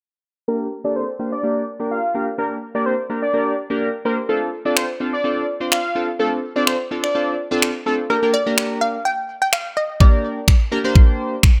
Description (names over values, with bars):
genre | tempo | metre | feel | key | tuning
dance-pop | 126 BPM | 4/4 | straight | G minor | A4 = 435 Hz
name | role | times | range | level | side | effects
fat analog lead | melody | 0.5-8.0 s | A4 to F5 | -25 LUFS | equal | sidechain pumping, low-pass filter
chorused retro synth keys | accompaniment | 0.5-11.4 s | Bb3 to C5 | -25 LUFS | equal | sidechain pumping, low-pass filter
pop drum kit | drums | 4.8-11.6 s | finger snaps, kick drum | -16 LUFS | equal | none
unison pluck | melody | 8.1-10.4 s | Bb4 to G5 | -23 LUFS | equal | tape echo
room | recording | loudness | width
light reverb | none | -20 LUFS | mono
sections
0.5-8.1 A section; 8.1-11.6 B section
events
filter sweep 0.5-8.1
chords
0.5 Gm; 4.3 Dm7; 8.1 Gm